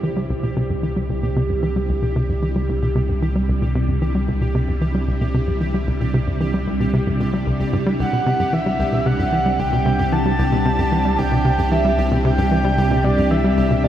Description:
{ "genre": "ambient, sequencer-driven space music", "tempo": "113 BPM", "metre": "4/4", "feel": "straight", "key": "C lydian", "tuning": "A4 = 443 Hz", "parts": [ { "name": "phased string machine", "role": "sustained chords", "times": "0.0-13.9 s", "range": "C3 to E4", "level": "-23 LUFS", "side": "equal", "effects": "ensemble chorus, phaser" }, { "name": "tight sequencer bass", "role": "riff", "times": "0.0-13.9 s", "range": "C2 to G3", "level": "-21 LUFS", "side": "equal", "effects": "analog delay" }, { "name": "warm sub bass", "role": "bass", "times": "0.0-13.9 s", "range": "C2", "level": "-24 LUFS", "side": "equal", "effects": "none" }, { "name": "pulsing gated texture", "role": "texture", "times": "0.0-13.9 s", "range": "G4", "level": "-29 LUFS", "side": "right 2 dB", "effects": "chorus, built-in reverb" }, { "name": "breathy flute-like synth lead", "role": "melody", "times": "8.0-13.9 s", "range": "D5 to A5", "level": "-21 LUFS", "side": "right 1 dB", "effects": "lush chorus, analog delay" } ], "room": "wet huge ambient reverb, RT60 7.9 s", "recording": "dreamy mix soaked in reverb", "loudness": "-17 LUFS", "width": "side -11 dB against mid", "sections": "0.0-13.9 A section", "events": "fade-in on string machine 0.0-13.9", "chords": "0.0 Cadd9", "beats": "0.03 0.56 1.09 | 1.63 2.16 2.69 3.22 | 3.75 4.28 4.81 5.34 | 5.87 6.41 6.94 7.47 | 8.00 8.53 9.06 9.59 | 10.12 10.65 11.18 11.71 | 12.25 12.78 13.31 13.84" }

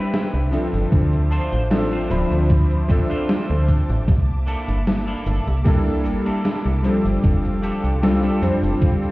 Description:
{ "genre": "vaporwave", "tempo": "76 BPM", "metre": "4/4", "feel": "straight", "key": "C major", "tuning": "A4 = 443 Hz", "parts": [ { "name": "bright electric grand piano", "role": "accompaniment", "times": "0.0-9.1 s", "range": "F3 to B5", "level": "-22 LUFS", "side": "left 1 dB", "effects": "analog chorus, analog delay" }, { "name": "rich studio string section", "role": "sustained chords", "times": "0.0-9.1 s", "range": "Bb3 to D6", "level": "-32 LUFS", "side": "equal", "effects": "none" }, { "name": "clean electric guitar", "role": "riff", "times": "0.0-8.7 s", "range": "Bb3 to C5", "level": "-32 LUFS", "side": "right 2 dB", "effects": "analog chorus, analog delay" }, { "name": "gated 80s digital drum machine", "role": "drums", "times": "0.1-9.1 s", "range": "cabasa, hi-hat, snare drum", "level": "-24 LUFS", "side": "equal", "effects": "gated reverb, gated reverb snare" }, { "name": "slap-like FM bass", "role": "bass", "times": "0.3-8.7 s", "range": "D1 to F2", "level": "-20 LUFS", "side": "equal", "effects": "tube saturation" }, { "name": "electronic kick drum", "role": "drums", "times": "0.9-9.0 s", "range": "none", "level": "-16 LUFS", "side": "equal", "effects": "none" } ], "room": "light reverb, digital ambience", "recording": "heard muffled through a wall, stone room reverb, EQ", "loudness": "-17 LUFS", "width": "side -19 dB against mid", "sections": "0.0-9.1 A section", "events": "none", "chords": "0.0 Cmaj7; 0.9 Dm7; 4.1 C13; 7.2 F69", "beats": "0.14 | 0.92 1.71 2.50 3.29 | 4.08 4.87 5.66 6.45 | 7.24 8.03 8.82" }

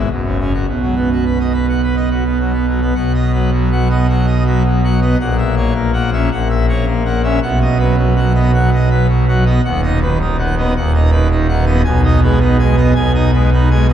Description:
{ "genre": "classical, organ toccata", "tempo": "108 BPM", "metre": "4/4", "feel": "straight", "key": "B major", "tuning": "A4 = 440 Hz", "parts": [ { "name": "pipe organ, full organ", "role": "solo", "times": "0.0-13.9 s", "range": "D#1 to G#5", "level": "-12 LUFS", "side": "equal", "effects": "none" } ], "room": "wet cathedral reverb, RT60 5.2 s", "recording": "dark, warm production", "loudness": "-12 LUFS", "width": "side -10 dB against mid", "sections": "0.0-3.0 A section; 3.0-13.9 B section", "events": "none", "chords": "0.1 F#5; 0.7 B; 5.2 F#7/A#; 7.4 B; 9.6 B/D#; 11.8 G#m/B", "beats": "0.10 | 0.67 1.25 1.82 2.39 | 2.96 3.52 4.08 4.64 | 5.20 5.75 6.31 6.87 | 7.42 7.98 8.53 9.08 | 9.64 10.19 10.74 11.29 | 11.85 12.40 12.96 13.51" }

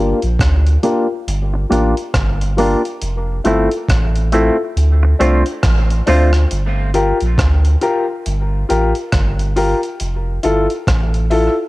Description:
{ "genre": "dub reggae", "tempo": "69 BPM", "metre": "4/4", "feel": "swing 60% on 16ths", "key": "G dorian", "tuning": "A4 = 440 Hz", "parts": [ { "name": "clean electric guitar", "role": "accompaniment", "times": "0.0-6.3 s", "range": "A3 to F4", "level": "-22 LUFS", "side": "right 2 dB", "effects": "high-pass filter, low-pass filter, cassette tape, dub echo" }, { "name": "warm upright piano", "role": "stabs", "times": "0.0-11.5 s", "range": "D4 to C5", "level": "-18 LUFS", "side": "left 2 dB", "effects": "high-pass filter, low-pass filter, cassette tape, dub echo" }, { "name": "warm sub bass", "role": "bass", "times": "0.0-11.5 s", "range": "F1 to D2", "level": "-15 LUFS", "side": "equal", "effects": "none" }, { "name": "breakbeat sampler-style drum kit", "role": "drums", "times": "0.2-11.6 s", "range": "hi-hat, kick drum, rim click", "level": "-19 LUFS", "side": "equal", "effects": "cassette tape" } ], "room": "little or no reverb", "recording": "home recording on cassette", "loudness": "-13 LUFS", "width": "side -19 dB against mid", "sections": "0.0-11.7 A section", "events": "filter sweep 0.0-11.7", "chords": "0.0 Gm7; 3.0 Fmaj7; 4.8 Dm7; 6.5 Gm7; 10.0 Fmaj7", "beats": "0.39 1.26 2.14 | 3.01 3.89 4.76 5.63 | 6.51 7.38 8.26 9.13 | 10.00 10.88" }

